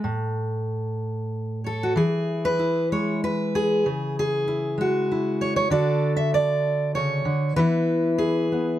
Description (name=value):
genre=folk, solo fingerstyle acoustic guitar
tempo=95 BPM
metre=3/4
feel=straight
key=unclear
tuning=A4 = 441 Hz
part: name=fingerpicked steel-string acoustic guitar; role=solo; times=0.0-8.8 s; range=A2 to E5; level=-21 LUFS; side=equal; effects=none
room=light reverb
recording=none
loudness=-21 LUFS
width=side -12 dB against mid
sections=0.0-2.0 A section; 2.0-8.8 B section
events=none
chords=0.0 A; 2.0 E; 3.9 C#m; 5.7 D; 7.6 E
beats=| 0.04 0.67 1.31 | 1.95 2.59 3.22 | 3.85 4.48 5.10 | 5.71 6.33 6.95 | 7.57 8.20